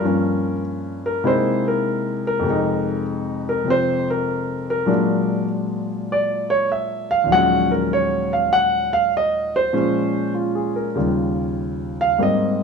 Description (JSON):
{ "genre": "solo jazz", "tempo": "99 BPM", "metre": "4/4", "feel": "swing 67% on 8ths", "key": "Bb minor", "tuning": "A4 = 440 Hz", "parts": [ { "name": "warm concert grand piano", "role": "solo", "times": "0.0-12.6 s", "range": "Eb2 to Gb5", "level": "-18 LUFS", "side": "equal", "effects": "none" } ], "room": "moderate large studio reverb, RT60 1.2 s", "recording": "none", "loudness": "-18 LUFS", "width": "side -5 dB against mid", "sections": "0.0-12.6 A section", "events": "grand piano solo 0.0-12.6", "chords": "0.0 Gm7b5; 1.2 C7alt; 2.4 Fm7; 4.9 Bbaug7; 7.3 Ebm11; 9.7 Bbm7; 11.0 Eb9" }